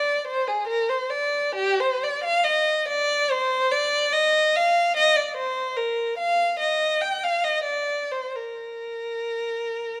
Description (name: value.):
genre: classical, baroque-style suite movement for unaccompanied violin.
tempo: 61-75 BPM.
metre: 4/4.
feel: rubato.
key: Bb major from 5.0 s.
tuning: A4 = 436 Hz.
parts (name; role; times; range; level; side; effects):
warm violin; solo; 0.0-10.0 s; G4 to G5; -24 LUFS; equal; none.
room: moderate concert hall reverb, RT60 1.7 s.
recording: close, detailed microphones.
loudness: -23 LUFS.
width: mono.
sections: 0.0-10.0 A section.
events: none.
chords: none.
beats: 0.69 | 1.58 2.46 3.31 4.14 | 4.97 5.78 6.61 7.46 | 8.37 9.35.